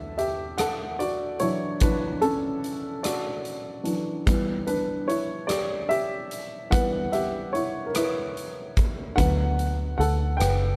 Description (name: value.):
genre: six-eight pop ballad.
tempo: 49 BPM (dotted quarters).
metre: 6/8.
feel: straight.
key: D major.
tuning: A4 = 440 Hz.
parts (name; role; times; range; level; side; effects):
dark baby grand piano; accompaniment; 0.0-10.8 s; D3 to G5; -29 LUFS; equal; none.
huge arena drum kit; drums; 0.2-10.6 s; hi-hat, kick drum, rim click; -31 LUFS; equal; none.
vintage muted fingered electric bass; bass; 9.2-10.8 s; F#1 to D2; -26 LUFS; equal; none.
room: little or no reverb.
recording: dark, warm production.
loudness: -26 LUFS.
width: mono.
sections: 0.0-10.8 A section.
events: grand piano solo 0.0-10.8.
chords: 0.0 Dadd9; 4.3 Em; 9.2 Bm.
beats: 0.59 | 1.82 3.04 | 4.27 5.50 | 6.72 7.95 | 9.18 10.40.